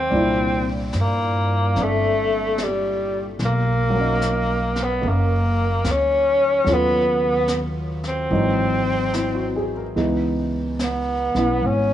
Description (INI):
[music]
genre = jazz ballad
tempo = 73 BPM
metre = 4/4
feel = swing 67% on 8ths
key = unclear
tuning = A4 = 439 Hz
[part]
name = breathy tenor saxophone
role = melody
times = 0.0-11.9 s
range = G3 to C#4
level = -21 LUFS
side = left 1 dB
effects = none
[part]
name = warm concert grand piano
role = accompaniment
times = 0.0-11.9 s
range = Bb2 to A#4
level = -25 LUFS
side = right 1 dB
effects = none
[part]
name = upright bass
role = bass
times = 0.0-11.9 s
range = F#1 to G2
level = -24 LUFS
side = equal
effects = none
[part]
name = jazz brush drum kit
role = drums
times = 0.1-11.9 s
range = brushed snare drum, hi-hat, snare drum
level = -34 LUFS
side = left 2 dB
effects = none
[sound]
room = little or no reverb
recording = worn, warbling old tape, cassette tape, warbly pitch drift, small room ambience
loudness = -18 LUFS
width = side -11 dB against mid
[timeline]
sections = 0.0-11.9 A section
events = none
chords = 0.1 C9; 3.4 Bmaj7; 6.7 D#m7b5; 8.3 G#7b13; 10.0 C#m7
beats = | 0.12 0.94 1.76 2.58 | 3.39 4.21 5.02 5.84 | 6.66 7.48 8.30 9.13 | 9.96 10.79 11.62